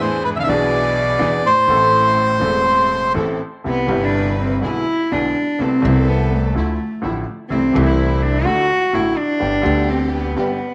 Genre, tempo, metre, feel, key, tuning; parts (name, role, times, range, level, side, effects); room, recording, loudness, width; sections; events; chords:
tango; 125 BPM; 4/4; rubato; A harmonic minor, C major from 3.7 s; A4 = 440 Hz
bandoneon; melody; 0.0-3.1 s; B4 to F5; -18 LUFS; equal
warm cello; second line; 0.0-10.7 s; G#2 to F#4; -23 LUFS; equal
bright upright piano; accompaniment; 0.0-10.6 s; E1 to A4; -25 LUFS; equal
rich studio string section; stabs; 0.0-10.6 s; F3 to B4; -31 LUFS; equal
upright bass; bass; 0.0-10.6 s; E1 to E2; -24 LUFS; equal
moderate spring reverb, RT60 1.9 s, small room ambience; -17 LUFS; mono
0.0-3.7 A section; 3.7-10.7 B section
cello solo 3.7-10.7
0.0 E7; 1.7 Am; 3.7 Cmaj7; 4.6 E7/B; 5.6 Amadd9/C; 6.6 Dmadd9; 7.5 Am/C; 8.5 D; 9.4 G